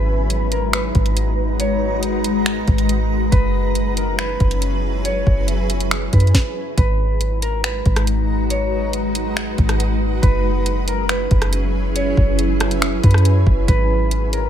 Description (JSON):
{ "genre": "hip hop, atmospheric cloud-rap", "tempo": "139 BPM", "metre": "4/4", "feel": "half-time", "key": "G# minor", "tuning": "A4 = 444 Hz", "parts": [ { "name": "mellow electric guitar", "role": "melody", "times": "0.0-14.5 s", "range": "A#4 to C#5", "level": "-26 LUFS", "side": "right 1 dB", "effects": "ping-pong delay" }, { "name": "granular cloud pad", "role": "sustained chords", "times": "0.0-14.5 s", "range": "F#3 to A#5", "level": "-22 LUFS", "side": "left 1 dB", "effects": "built-in reverb, sidechain pumping" }, { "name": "soft 808-style bass", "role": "bass", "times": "0.0-14.5 s", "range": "F#1 to F#2", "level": "-19 LUFS", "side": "equal", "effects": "none" }, { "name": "smooth R&B drum kit", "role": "drums", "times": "0.3-14.4 s", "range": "finger snaps, hi-hat, kick drum, rim click, snare drum", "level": "-18 LUFS", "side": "equal", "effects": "none" } ], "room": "digital ambience", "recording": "none", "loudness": "-16 LUFS", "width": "side -10 dB against mid", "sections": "0.0-6.8 A section; 6.8-14.5 B section", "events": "stop 6.3-6.8", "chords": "0.0 G#m9; 3.3 F#9sus4; 6.8 G#m9; 10.2 F#9sus4; 13.7 G#m9" }